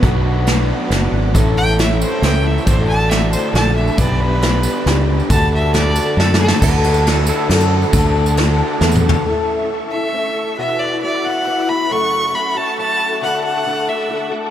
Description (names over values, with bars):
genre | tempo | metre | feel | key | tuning
folk rock and heartland rock | 137 BPM | 3/4 | straight | unclear | A4 = 440 Hz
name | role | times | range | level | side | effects
picked old ladder-braced acoustic guitar | accompaniment | 0.0-14.5 s | E2 to B4 | -22 LUFS | left 3 dB | ensemble chorus
bright tonewheel organ | sustained chords | 0.0-14.5 s | F#4 to D6 | -28 LUFS | right 1 dB | slow rotary speaker, chorus vibrato
overdriven electric guitar | riff | 0.0-9.2 s | A2 to B4 | -22 LUFS | right 1 dB | none
fingered electric bass | bass | 0.0-9.2 s | F#1 to F#2 | -16 LUFS | equal | none
soft brush drum kit | drums | 0.0-9.2 s | crash cymbal, hi-hat, kick drum, ride cymbal, snare drum, toms | -19 LUFS | equal | none
tambourine | percussion | 1.4-9.2 s | none | -33 LUFS | right 6 dB | none
rich fiddle | melody | 1.6-6.6, 9.9-14.3 s | A4 to C#6 | -21 LUFS | equal | analog delay
pedal steel guitar | second line | 6.6-8.8 s | E4 to B4 | -27 LUFS | right 4 dB | none
room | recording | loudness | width
moderate huge ambient reverb, RT60 8.3 s | dreamy mix soaked in reverb | -13 LUFS | side -10 dB against mid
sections
0.0-6.6 A section; 6.6-9.2 B section; 9.2-14.5 C section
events
fiddle solo 0.0-6.6; drum fill 6.2-6.6, 8.8-9.2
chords
0.0 Bm; 1.4 A; 2.7 D/A; 4.0 G/B; 5.3 D; 9.2 A; 10.6 Esus2; 11.9 F#m; 13.2 D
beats
| 0.04 0.48 0.92 | 1.36 1.80 2.24 | 2.68 3.11 3.55 | 3.99 4.43 4.87 | 5.30 5.74 6.18 | 6.62 7.06 7.50 | 7.93 8.37 8.81 | 9.25 9.69 10.13 | 10.56 11.00 11.44 | 11.88 12.32 12.76 | 13.20 13.64 14.08